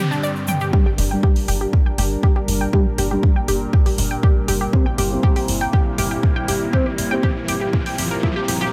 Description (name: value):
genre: melodic techno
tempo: 120 BPM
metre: 4/4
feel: straight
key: G minor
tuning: A4 = 440 Hz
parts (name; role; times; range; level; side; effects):
- warm analog pad; sustained chords; 0.0-8.7 s; G2 to Bb4; -30 LUFS; equal; chorus, sidechain pumping
- analog pluck; arpeggios; 0.0-8.7 s; D4 to G5; -28 LUFS; equal; chorus, cassette tape, sidechain pumping, digital delay
- overtone-sweeping drone; drone; 0.4-8.7 s; G2 to Bb3; -33 LUFS; equal; chorus, built-in reverb, sidechain pumping
- noise sweep and riser; sound effects; 0.0-8.7 s; none; -35 LUFS; equal; none
- egg shaker; percussion; 0.1-0.7 s; none; -35 LUFS; equal; none
- house drum kit; drums; 0.5-8.6 s; hi-hat, toms; -29 LUFS; equal; overdrive, high-pass filter on toms, low-pass filter on toms, studio reverb, high-pass filter on hats, low-pass filter on hats
- analog synth brass; stabs; 0.7-7.3 s; G3 to C5; -30 LUFS; equal; chorus, sidechain pumping, digital delay
- electronic kick drum; drums; 0.7-8.3 s; none; -19 LUFS; equal; overdrive, studio reverb
- tight sequencer bass; bass; 1.0-8.7 s; G1; -26 LUFS; equal; sidechain pumping
room: digital ambience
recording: high-pass filter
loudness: -19 LUFS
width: mono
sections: 0.7-8.7 A section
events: noise sweep 0.0-0.7; build-up 0.7-8.7; riser 0.7-8.7; filter sweep on synth pluck 0.7-8.7; filter sweep on analog polysynth 0.7-8.7; filter sweep 0.7-8.7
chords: 0.0 Bb6/G (rootless); 0.7 Gm; 4.7 C/G